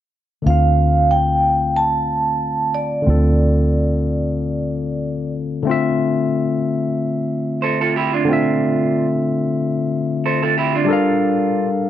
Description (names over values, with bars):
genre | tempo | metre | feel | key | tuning
R&B | 92 BPM | 4/4 | swing 53% on 16ths | D minor | A4 = 440 Hz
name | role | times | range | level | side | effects
barky tine electric piano | accompaniment | 0.4-11.9 s | D3 to F5 | -19 LUFS | left 2 dB | overdrive, auto-pan, plate reverb
vibraphone with soft mallets | melody | 0.5-5.3 s | D5 to A5 | -20 LUFS | right 2 dB | plate reverb
vintage muted fingered electric bass | bass | 0.5-5.6 s | D2 | -18 LUFS | right 1 dB | none
electric guitar through a small old amp | second line | 7.6-11.7 s | D4 to C5 | -19 LUFS | right 7 dB | plate reverb
room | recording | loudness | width
moderate studio reverb, RT60 0.5 s | none | -16 LUFS | side -11 dB against mid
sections
0.4-5.7 A section; 5.7-11.9 B section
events
none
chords
0.4 Dm7; 5.7 Dm9; 10.9 Gm9